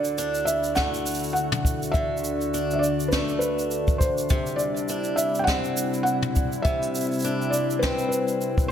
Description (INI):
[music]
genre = folktronica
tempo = 102 BPM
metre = 4/4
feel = swing 56% on 16ths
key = D mixolydian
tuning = A4 = 440 Hz
[part]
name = felt-muted upright piano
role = melody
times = 0.0-8.7 s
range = B4 to G5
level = -27 LUFS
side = equal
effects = tape echo
[part]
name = warbly tape-like pad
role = sustained chords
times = 0.0-8.7 s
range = D2 to F#4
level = -28 LUFS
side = left 3 dB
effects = chorus, built-in reverb
[part]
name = picked swing-style acoustic guitar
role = arpeggios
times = 0.0-8.7 s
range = C3 to A4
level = -29 LUFS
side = right 2 dB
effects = tape echo
[part]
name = jazz brush drum kit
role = drums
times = 0.0-8.7 s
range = shaker, snare drum, toms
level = -31 LUFS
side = equal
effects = none
[part]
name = kick drum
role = drums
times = 0.8-8.7 s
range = none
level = -24 LUFS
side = equal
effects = none
[sound]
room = light reverb, studio ambience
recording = none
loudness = -22 LUFS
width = side -9 dB against mid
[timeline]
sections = 0.0-8.7 A section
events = none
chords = 0.0 Dadd9; 4.3 Cadd9